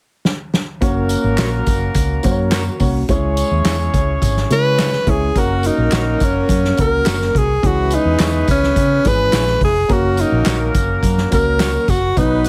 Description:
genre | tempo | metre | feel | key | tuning
uptempo 1960s-style soul | 106 BPM | 4/4 | straight | F# mixolydian | A4 = 441 Hz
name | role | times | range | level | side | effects
natural country drum kit | drums | 0.2-12.5 s | hi-hat, kick drum, snare drum | -22 LUFS | equal | none
mellow horn section | second line | 0.8-12.5 s | E3 to C#5 | -26 LUFS | equal | plate reverb
dark upright piano | accompaniment | 0.8-12.5 s | E3 to C#5 | -24 LUFS | equal | none
vintage muted fingered electric bass | bass | 0.8-12.5 s | E#1 to C#3 | -22 LUFS | equal | none
tambourine and handclaps | percussion | 0.8-12.5 s | none | -32 LUFS | equal | none
electric guitar through a small old amp | stabs | 1.4-11.7 s | E4 to C#5 | -31 LUFS | equal | spring reverb, plate reverb
breathy tenor saxophone | melody | 4.5-12.5 s | C#4 to B4 | -20 LUFS | equal | none
room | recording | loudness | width
light reverb | heavily compressed radio sound | -16 LUFS | mono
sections
0.8-5.4 A section; 5.4-12.5 B section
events
drum fill 0.2-0.8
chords
0.0 N.C.; 0.8 F#; 3.1 C#m; 5.4 F#; 7.6 C#m; 9.9 F#

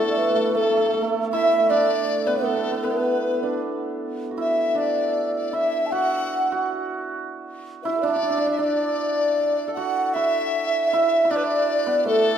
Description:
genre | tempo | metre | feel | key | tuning
chinese traditional, Chinese chamber ensemble | 78 BPM | 2/4 | straight | D gong mode | A4 = 440 Hz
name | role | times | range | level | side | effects
mellow hollow low xiao | melody | 0.0-12.4 s | A4 to A5 | -24 LUFS | equal | none
hammered dulcimer | second line | 0.0-12.4 s | A3 to A4 | -24 LUFS | right 4 dB | none
mellow large dizi | second line | 0.0-12.4 s | D4 to F#5 | -26 LUFS | left 6 dB | none
room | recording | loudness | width
moderate concert hall reverb, RT60 2.2 s | none | -20 LUFS | side -8 dB against mid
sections
0.0-10.5 A section; 10.5-12.4 B section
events
none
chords
none

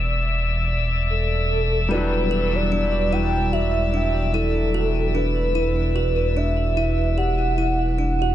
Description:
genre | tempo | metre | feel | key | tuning
trip hop | 74 BPM | 4/4 | swing 58% on 16ths | E minor | A4 = 438 Hz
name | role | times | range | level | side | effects
bright upright piano | accompaniment | 0.0-8.3 s | F#3 to F#4 | -30 LUFS | left 2 dB | harmonic tremolo, low-pass filter, tape echo
warm studio violin section | sustained chords | 0.0-8.3 s | D5 to E6 | -28 LUFS | left 4 dB | low-pass filter
dark detuned saw bass | bass | 0.0-8.3 s | E1 | -22 LUFS | equal | none
pure breathy sine lead | melody | 1.1-8.3 s | A4 to G5 | -25 LUFS | right 1 dB | analog chorus, dub echo
music box | arpeggios | 1.9-8.3 s | D4 to G4 | -26 LUFS | right 2 dB | tape echo
room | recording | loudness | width
light reverb, studio ambience | echo-heavy mix | -19 LUFS | side -12 dB against mid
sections
0.0-8.3 A section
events
filter sweep on upright piano 0.0-8.3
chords
0.0 Em9

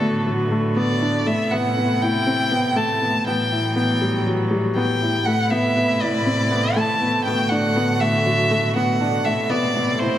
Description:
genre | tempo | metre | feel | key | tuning
electronica | 120 BPM | 4/4 | straight | A dorian | A4 = 441 Hz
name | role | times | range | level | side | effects
warm violin | melody | 0.0-10.2 s | A4 to A5 | -22 LUFS | equal | none
dark string quartet | sustained chords | 0.0-10.2 s | B2 to B4 | -26 LUFS | right 1 dB | none
warm upright piano | riff | 0.0-10.2 s | F#3 to E4 | -23 LUFS | left 1 dB | low-pass filter
rich symphonic cello section | bass | 0.0-10.2 s | A2 | -25 LUFS | equal | none
room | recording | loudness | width
moderate lush hall reverb, RT60 1.9 s, studio reverb | none | -18 LUFS | side -11 dB against mid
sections
0.0-10.2 A section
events
none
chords
0.0 Bm7/A; 1.3 Amadd9; 3.3 Emadd9/A; 5.3 Amadd9; 7.3 Bm7/A; 9.3 Amadd9

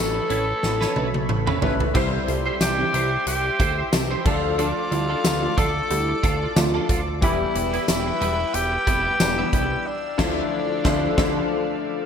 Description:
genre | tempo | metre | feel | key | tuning
1980s-style pop | 91 BPM | 4/4 | swing 55% on 16ths | D dorian | A4 = 440 Hz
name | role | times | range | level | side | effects
breathy tenor saxophone | melody | 0.0-11.8 s | D4 to A4 | -25 LUFS | left 1 dB | ping-pong delay
bright concert grand piano | accompaniment | 0.0-12.1 s | D3 to C5 | -28 LUFS | left 5 dB | ensemble chorus
chorused pulse-width pad | sustained chords | 0.0-12.1 s | G4 to E6 | -32 LUFS | equal | none
fat analog bass | bass | 0.0-11.4 s | E1 to D2 | -27 LUFS | equal | none
twelve-string electric guitar | riff | 0.2-11.4 s | F3 to C5 | -31 LUFS | right 4 dB | ensemble chorus, ping-pong delay
huge arena drum kit | drums | 0.3-11.4 s | crash cymbal, hi-hat, kick drum, snare drum, tambourine, toms | -24 LUFS | equal | gated reverb
funky polysynth comp | stabs | 1.9-6.8 s | D3 to C5 | -28 LUFS | right 2 dB | chorus
room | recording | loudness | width
moderate plate reverb, RT60 1.9 s, studio ambience | bright 1980s-style digital production | -20 LUFS | side -7 dB against mid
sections
0.0-12.1 A section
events
drum fill 0.6-1.9; band accent 9.9-12.1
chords
0.0 Aadd9; 1.9 C; 4.3 Dm; 7.2 Em; 9.9 Dmadd9

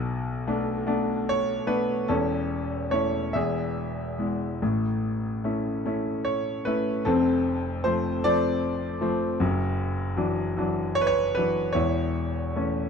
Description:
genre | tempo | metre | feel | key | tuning
classical, lyrical solo piano | 47-53 BPM (dotted quarters) | 6/8 | rubato | A major | A4 = 439 Hz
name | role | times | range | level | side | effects
bright grand piano | solo | 0.0-12.9 s | E1 to E5 | -24 LUFS | left 1 dB | none
room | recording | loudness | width
light reverb | dark, warm production | -24 LUFS | side -6 dB against mid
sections
0.0-12.9 A section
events
none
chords
0.0 Bm7; 2.1 A/E; 3.3 E; 4.6 A; 7.1 F; 9.4 Dadd9/F#; 11.8 A/E

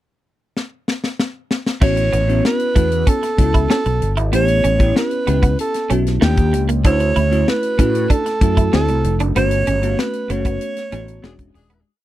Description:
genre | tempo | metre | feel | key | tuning
polished 1980s jazz-funk pop | 96 BPM | 4/4 | straight | A mixolydian | A4 = 439 Hz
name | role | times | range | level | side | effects
tight funk drum kit | drums | 0.6-11.8 s | crash cymbal, hi-hat, kick drum, snare drum | -18 LUFS | equal | none
breathy alto saxophone | melody | 1.8-11.6 s | G4 to C#5 | -20 LUFS | right 2 dB | none
bell-like FM electric piano | accompaniment | 1.8-11.9 s | G#3 to G4 | -22 LUFS | left 2 dB | lush chorus
clean electric guitar | riff | 1.8-11.8 s | G#3 to E4 | -25 LUFS | right 6 dB | ensemble chorus
fretless electric bass | bass | 1.8-11.8 s | D#1 to A2 | -18 LUFS | equal | lush chorus
warm horn section | second line | 11.2-11.8 s | G#3 to G#4 | -53 LUFS | left 6 dB | none
room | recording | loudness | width
light reverb | dry, close 1970s-style studio recording | -15 LUFS | side -14 dB against mid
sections
0.0-1.8 pickup bar; 1.8-11.9 verse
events
drum fill 0.6-1.8; fade-out 9.4-11.9; band accent 9.4-11.9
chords
0.0 N.C.; 1.8 A69; 4.3 A9; 6.2 D#maj9; 6.8 Dmaj9; 8.7 D7; 9.4 Gmaj9#11; 11.2 E13

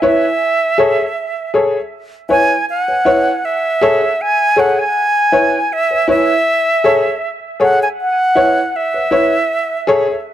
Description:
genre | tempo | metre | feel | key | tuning
reggae | 79 BPM | 4/4 | straight | unclear | A4 = 440 Hz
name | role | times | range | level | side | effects
bright concert flute | melody | 0.0-10.3 s | E5 to G#5 | -14 LUFS | right 1 dB | dub echo
dark grand piano | stabs | 0.0-10.1 s | E4 to C#5 | -14 LUFS | left 2 dB | none
room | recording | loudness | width
moderate spring reverb, RT60 1.1 s | none | -12 LUFS | side -11 dB against mid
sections
0.0-10.3 A section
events
none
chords
0.4 Amaj7; 1.9 C#m7; 3.4 Amaj7; 4.9 C#m7; 6.5 Amaj7; 8.0 C#m7; 9.5 Amaj7

